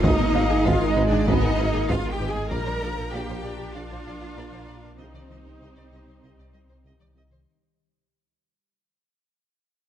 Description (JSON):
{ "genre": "cinematic, hybrid orchestral and electronic film score", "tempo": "97 BPM", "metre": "4/4", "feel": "straight", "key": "C minor", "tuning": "A4 = 445 Hz", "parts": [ { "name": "warm studio violin section", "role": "melody", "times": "0.0-7.4 s", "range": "Ab4 to Eb5", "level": "-37 LUFS", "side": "left 4 dB", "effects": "none" }, { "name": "warm symphonic violin section", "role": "second line", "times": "0.0-6.8 s", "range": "C5 to Bb5", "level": "-34 LUFS", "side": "left 4 dB", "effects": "none" }, { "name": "warm symphonic viola section", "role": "accompaniment", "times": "0.0-7.1 s", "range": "F3 to Eb4", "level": "-33 LUFS", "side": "right 2 dB", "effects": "none" }, { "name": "mellow French horn section", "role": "sustained chords", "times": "0.0-6.8 s", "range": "C4 to Bb4", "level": "-32 LUFS", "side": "left 3 dB", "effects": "none" }, { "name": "warbly tape-like pad", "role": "sustained chords", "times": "0.0-7.5 s", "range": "G3 to Eb5", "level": "-32 LUFS", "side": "right 1 dB", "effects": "chorus, built-in reverb" }, { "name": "soft round pluck", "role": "arpeggios", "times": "0.0-7.4 s", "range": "C3 to Bb4", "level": "-34 LUFS", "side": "left 3 dB", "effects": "none" }, { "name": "rich studio double bass section", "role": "bass", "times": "0.0-7.4 s", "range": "Ab1 to C2", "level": "-32 LUFS", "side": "right 3 dB", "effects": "none" }, { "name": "warm studio cello section", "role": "bass", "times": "0.0-6.8 s", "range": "C4 to Bb4", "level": "-29 LUFS", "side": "right 3 dB", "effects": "none" }, { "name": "warm sub bass", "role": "bass", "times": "0.0-7.5 s", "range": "Ab1 to C2", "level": "-31 LUFS", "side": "equal", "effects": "none" }, { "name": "warm tuba", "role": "bass", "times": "0.0-7.2 s", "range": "Ab1 to C2", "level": "-30 LUFS", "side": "right 3 dB", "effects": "none" }, { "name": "taiko ensemble", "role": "drums", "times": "0.0-3.7 s", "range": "none", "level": "-28 LUFS", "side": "equal", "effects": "none" }, { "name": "bright concert grand piano", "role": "texture", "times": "0.0-7.5 s", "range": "Bb4 to Bb5", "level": "-36 LUFS", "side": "left 3 dB", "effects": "none" } ], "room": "moderate scoring stage reverb, RT60 1.8 s", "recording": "none", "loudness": "-20 LUFS", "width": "side -10 dB against mid", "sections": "0.0-7.5 A section", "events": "fade-out 0.0-7.5", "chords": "0.0 Abm; 2.5 Bb; 5.0 Cm", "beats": "| 0.03 0.65 1.27 1.89 | 2.51 3.13 3.75 4.36 | 4.98 5.60 6.22 6.84" }